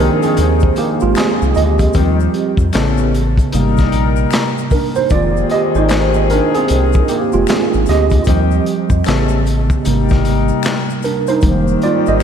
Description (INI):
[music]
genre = R&B, neo-soul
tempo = 76 BPM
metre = 4/4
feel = swing 62% on 16ths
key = unclear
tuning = A4 = 442 Hz
[part]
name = tine electric piano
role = accompaniment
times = 0.0-12.2 s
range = C3 to Eb5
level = -15 LUFS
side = right 4 dB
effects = overdrive, ensemble chorus
[part]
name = mellow horn section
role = stabs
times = 0.0-12.2 s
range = Eb3 to Bb4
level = -21 LUFS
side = left 10 dB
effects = analog delay
[part]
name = round analog bass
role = bass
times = 0.0-12.2 s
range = F1 to F2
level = -16 LUFS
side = left 1 dB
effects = none
[part]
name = crunchy breakbeat drum kit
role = drums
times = 0.2-12.0 s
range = handclaps, hi-hat, kick drum, snare drum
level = -18 LUFS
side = left 1 dB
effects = none
[part]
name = tube shaker and finger snaps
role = percussion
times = 0.2-12.2 s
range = none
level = -33 LUFS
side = left 13 dB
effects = none
[sound]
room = moderate lush hall reverb, RT60 2.8 s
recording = dreamy mix soaked in reverb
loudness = -12 LUFS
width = side -8 dB against mid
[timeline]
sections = 0.0-12.2 A section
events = tine electric piano solo 0.0-12.2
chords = 0.0 Fm11; 2.0 Eb6; 2.7 Amaj9; 3.5 Abmaj9; 5.1 Fm11; 8.3 Eb6; 9.1 Amaj9; 9.8 Abmaj9; 11.4 Fm11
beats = 0.37 1.16 | 1.95 2.74 3.53 4.32 | 5.11 5.90 6.69 7.48 | 8.27 9.06 9.85 10.64 | 11.43 12.21